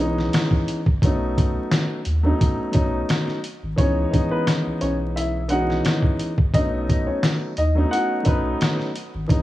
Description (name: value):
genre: hip hop, boom-bap hip-hop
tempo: 87 BPM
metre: 4/4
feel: swing 55% on 16ths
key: unclear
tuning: A4 = 440 Hz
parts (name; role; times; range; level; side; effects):
- dark baby grand piano; accompaniment; 0.0-9.4 s; E3 to D#4; -24 LUFS; equal; cassette tape, high-pass filter, low-pass filter
- warm sub bass; bass; 0.0-9.4 s; F#1 to D#2; -24 LUFS; equal; none
- trip hop sampler-style drum kit; drums; 0.2-9.4 s; hi-hat, kick drum, snare drum; -21 LUFS; equal; vintage 12-bit sampler grit
- warm upright piano; melody; 3.8-8.8 s; B3 to F#5; -26 LUFS; left 1 dB; high-pass filter, low-pass filter, tape echo
room: small room ambience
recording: vinyl crackle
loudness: -19 LUFS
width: side -15 dB against mid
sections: 0.0-9.4 A section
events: none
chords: 0.0 C#m9; 1.0 B7; 3.8 C#m9; 6.5 B7